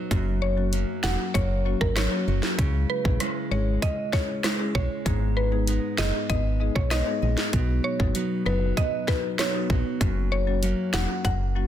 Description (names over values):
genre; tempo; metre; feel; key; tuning
dancehall; 97 BPM; 4/4; straight; unclear; A4 = 440 Hz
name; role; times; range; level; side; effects
nylon-string guitar; arpeggios; 0.0-11.7 s; F#2 to E4; -32 LUFS; right 7 dB; ping-pong delay
marimba with medium mallets; accompaniment; 0.1-11.7 s; F#3 to G#4; -31 LUFS; left 7 dB; none
solid FM bass; bass; 0.1-11.7 s; E1 to C#2; -25 LUFS; equal; none
island pop drum kit; drums; 0.1-11.4 s; hi-hat, kick drum, rim click, snare drum; -27 LUFS; equal; soft clipping on snare
mallet-like synth pluck; melody; 0.4-11.4 s; A#4 to F#5; -30 LUFS; equal; chorus, ping-pong delay
room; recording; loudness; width
digital ambience; dense, heavily limited modern master; -22 LUFS; side -10 dB against mid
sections
0.0-11.7 A section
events
none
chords
0.1 F#; 2.6 C#m; 5.1 G#m; 10.0 F#